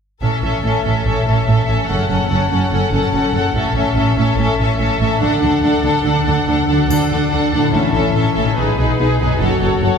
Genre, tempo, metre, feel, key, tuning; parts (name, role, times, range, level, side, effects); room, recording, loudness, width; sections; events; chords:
cinematic, heroic adventure film score; 144 BPM; 4/4; straight; A major; A4 = 444 Hz
rich studio violin section; melody; 0.2-10.0 s; B4 to F#5; -23 LUFS; left 2 dB
rich symphonic violin section; second line; 0.2-10.0 s; G#4 to A4; -21 LUFS; left 4 dB
warm symphonic viola section; accompaniment; 0.2-10.0 s; C#4 to F#4; -20 LUFS; equal
clear symphonic double bass section; bass; 0.2-9.9 s; F#1 to D2; -20 LUFS; right 2 dB
warm symphonic cello section; bass; 0.2-9.9 s; F#2 to D3; -21 LUFS; right 2 dB
concert harp; arpeggios; 6.7-10.0 s; F#2 to D5; -21 LUFS; left 6 dB
triangle; percussion; 6.9-7.7 s; -36 LUFS; left 3 dB
timpani; percussion; 7.7-8.3 s; A2; -26 LUFS; left 2 dB
wet scoring stage reverb, RT60 2.0 s; heard from further back in the room; -14 LUFS; side -6 dB against mid
0.2-6.9 A section; 6.9-10.0 B section
build-up 6.9-10.0
0.2 A; 1.9 F#m; 3.6 A; 5.2 D; 7.7 A; 8.6 B6; 9.4 F#m